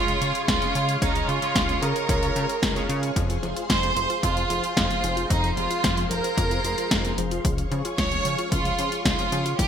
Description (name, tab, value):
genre	italo disco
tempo	112 BPM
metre	4/4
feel	straight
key	unclear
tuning	A4 = 441 Hz
part	rich chamber violin section	melody	0.0-9.7 s	Eb4 to Db5	-26 LUFS	right 3 dB	digital delay
part	string machine, full ensemble	sustained chords	0.0-9.7 s	Ab4 to E6	-31 LUFS	left 1 dB	ensemble chorus
part	chorused polysynth	stabs	0.0-3.1 s	Db3 to Eb5	-31 LUFS	right 3 dB	ping-pong delay
part	chorused synth bass	bass	0.0-9.7 s	F1 to Db3	-29 LUFS	equal	none
part	house drum kit	drums	0.1-9.7 s	hi-hat, snare drum	-27 LUFS	left 1 dB	gated reverb
part	electronic kick drum	drums	0.5-9.7 s	none	-28 LUFS	equal	none
part	wide unison pluck	arpeggios	3.2-9.7 s	E3 to F4	-33 LUFS	left 4 dB	ping-pong delay
room	light reverb, digital ambience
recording	bright 1980s-style digital production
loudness	-21 LUFS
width	side -8 dB against mid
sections	0.0-9.7 A section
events	none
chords	0.0 Db; 3.2 Fm; 7.4 Db